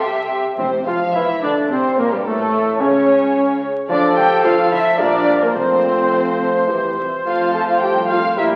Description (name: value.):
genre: quick classical-period movement for symphony orchestra.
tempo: 108 BPM.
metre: 3/4.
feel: straight.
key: F major.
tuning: A4 = 440 Hz.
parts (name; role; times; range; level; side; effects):
muted studio violin section; melody; 0.0-8.6 s; G3 to C6; -35 LUFS; equal; none.
muted chamber violin section; second line; 0.0-8.5 s; G4 to A5; -23 LUFS; equal; none.
muted chamber viola section; accompaniment; 0.0-8.6 s; G3 to A4; -27 LUFS; equal; none.
muted chamber cello section; bass; 0.0-8.6 s; C2 to F3; -36 LUFS; equal; none.
muted chamber double bass section; bass; 0.0-8.6 s; F1 to F2; -43 LUFS; equal; none.
dark clarinet; second line; 0.6-8.6 s; G3 to A4; -28 LUFS; equal; none.
flute section; second line; 0.6-8.6 s; G4 to A5; -25 LUFS; equal; none.
dark bassoon; accompaniment; 0.6-8.6 s; G2 to G3; -24 LUFS; equal; none.
dark French horn section; sustained chords; 0.6-8.6 s; F3 to G4; -28 LUFS; equal; none.
bright trumpet; stabs; 0.6-8.6 s; G3 to C5; -24 LUFS; equal; none.
timpani; percussion; 0.6-1.4 s; F2; -36 LUFS; equal; none.
room: wet recital hall reverb, RT60 1.5 s.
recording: very old 78 rpm record, vinyl crackle.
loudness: -17 LUFS.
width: mono.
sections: 0.6-8.6 A section.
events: none.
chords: 0.0 C; 0.6 F5/C; 2.3 A; 3.9 Dm; 5.0 Gm7/Bb; 5.6 F/C; 6.7 C; 7.3 F.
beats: 0.01 | 0.59 1.15 1.70 | 2.25 2.81 3.36 | 3.90 4.45 5.00 | 5.56 6.12 6.69 | 7.26 7.82 8.38.